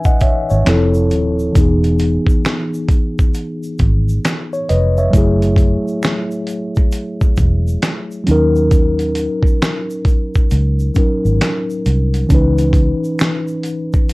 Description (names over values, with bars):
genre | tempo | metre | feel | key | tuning
R&B, neo-soul | 67 BPM | 4/4 | swing 64% on 16ths | unclear | A4 = 440 Hz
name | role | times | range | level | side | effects
mellow tine electric piano | accompaniment | 0.0-14.1 s | E3 to G#5 | -18 LUFS | left 1 dB | slow stereo tremolo
egg shaker and finger snaps | percussion | 0.0-14.1 s | none | -32 LUFS | right 1 dB | none
dusty soul sampler-style drum kit | drums | 0.1-14.1 s | hi-hat, kick drum, snare drum | -15 LUFS | equal | vintage 12-bit sampler grit
vintage muted fingered electric bass | bass | 0.2-12.9 s | D#1 to D#2 | -15 LUFS | equal | none
room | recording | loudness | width
light reverb | dark, warm production | -13 LUFS | side -22 dB against mid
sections
0.0-14.1 A section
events
none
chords
0.0 C#m9; 0.7 Fmaj7; 1.6 Emaj7; 5.1 F#m9; 8.3 D#m7; 12.3 C#m9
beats
0.66 | 1.55 2.45 3.35 4.24 | 5.14 6.03 6.93 7.82 | 8.72 9.62 10.51 11.41 | 12.30 13.20 14.09